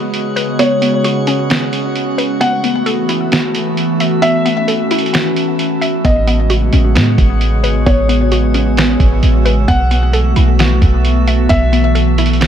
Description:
hip hop, atmospheric cloud-rap; 132 BPM; 4/4; half-time; A4 = 440 Hz
warbly tape-like pad; sustained chords; 0.0-12.5 s; C#3 to F#4; -17 LUFS; right 1 dB; chorus, built-in reverb, sidechain pumping
hollow square pluck; arpeggios; 0.0-12.5 s; B3 to E5; -20 LUFS; left 2 dB; chorus, ping-pong delay
drifting glass-harmonics texture; texture; 0.0-12.5 s; B3 to F#5; -25 LUFS; equal; chorus, built-in reverb
lo-fi sampler-style drum kit; drums; 0.1-12.5 s; hi-hat, kick drum, snare drum; -17 LUFS; equal
felt-muted upright piano; melody; 0.6-11.9 s; C#5 to F#5; -20 LUFS; left 1 dB; ping-pong delay
clean 808-style bass; bass; 6.0-12.5 s; G#1 to A2; -12 LUFS; equal
reverse cymbal; sound effects; 12.4-12.5 s; barely audible
light reverb, digital ambience; -11 LUFS; side -9 dB against mid
0.0-12.5 A section
break 0.0-6.0
0.0 C#7sus4; 2.4 B7sus4; 6.0 Amaj13; 9.7 B7sus4

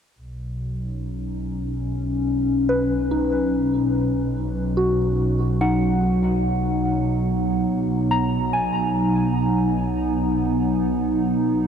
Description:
ambient; 72 BPM; 4/4; straight; B major; A4 = 440 Hz
warbly tape-like pad; sustained chords; 0.5-11.7 s; B2 to D#4; -22 LUFS; equal; chorus, built-in reverb
warm chamber double bass section; bass; 0.2-11.7 s; B1; -27 LUFS; equal
soft synth bell; arpeggios; 2.7-11.7 s; D#4 to A#5; -25 LUFS; left 1 dB; chorus, tremolo, diffuse ambient delay
wet huge ambient reverb, RT60 8.7 s; dark, warm production; -20 LUFS; side -7 dB against mid
0.2-11.7 A section
0.2 Bmaj9

